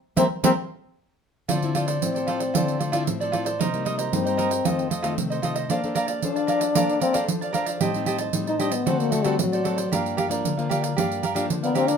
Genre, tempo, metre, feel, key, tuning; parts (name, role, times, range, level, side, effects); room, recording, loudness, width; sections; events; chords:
samba and choro; 114 BPM; 4/4; straight; D minor; A4 = 440 Hz
breathy trombone; second line; 0.2-12.0 s; F#3 to Eb4; -24 LUFS; left 4 dB
cavaquinho; accompaniment; 0.2-12.0 s; Eb4 to A5; -26 LUFS; right 4 dB
nylon-string guitar; accompaniment; 0.2-12.0 s; F2 to C5; -28 LUFS; left 5 dB
pandeiro; percussion; 0.2-12.0 s; -27 LUFS; right 6 dB
moderate studio reverb, RT60 0.7 s; minimal, uncompressed stereo recording; -21 LUFS; side -6 dB against mid
0.0-1.5 A section; 1.5-12.0 B section
band accent 0.0-1.5; trombone solo 0.0-1.5, 1.5-12.0
0.0 C7; 1.5 Dm9; 3.6 Cm7; 4.7 F7; 5.7 Bbmaj9; 7.8 Am7b5; 8.9 D7; 9.9 Gm7